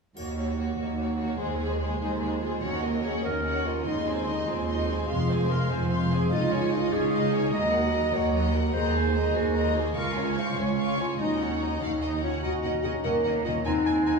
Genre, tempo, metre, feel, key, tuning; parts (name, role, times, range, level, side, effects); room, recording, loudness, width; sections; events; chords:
cinematic, heroic adventure film score; 98 BPM (dotted quarters); 6/8; straight; Eb dorian; A4 = 440 Hz
warm symphonic violin section; melody; 0.2-14.1 s; C5 to Db6; -36 LUFS; left 2 dB
warm symphonic violin section; second line; 0.2-14.1 s; Gb4 to Ab5; -34 LUFS; left 3 dB
rich symphonic viola section; accompaniment; 0.2-14.1 s; Gb3 to F4; -34 LUFS; right 3 dB
rich symphonic cello section; bass; 0.2-14.2 s; Db2 to C4; -32 LUFS; right 3 dB
warm symphonic double bass section; bass; 0.2-14.2 s; F1 to Eb2; -32 LUFS; right 2 dB
triangle; percussion; 0.2-0.9 s; -50 LUFS; left 4 dB
clear clarinet; second line; 2.0-14.2 s; Eb4 to Gb5; -31 LUFS; equal
mellow French horn section; sustained chords; 2.6-14.2 s; Ab3 to Bb4; -30 LUFS; left 1 dB
warm oboe; second line; 12.4-14.2 s; Ab5 to Bb5; -35 LUFS; right 3 dB
clear trombone section; sustained chords; 12.4-14.2 s; Eb3 to Db4; -36 LUFS; equal
wet recital hall reverb, RT60 1.6 s; recorded in a church or concert hall, studio reverb; -24 LUFS; side -4 dB against mid
0.2-2.6 A section; 2.6-12.4 B section; 12.4-14.2 B section
0.2 Ebm7; 1.4 Ab/Eb; 2.6 Ebm7; 3.9 Ab/Eb; 5.1 Fm; 6.3 Dbadd9; 7.5 Ebm; 8.7 Abadd9/Eb; 10.0 Db; 11.2 Ebm7; 13.7 Ab/Eb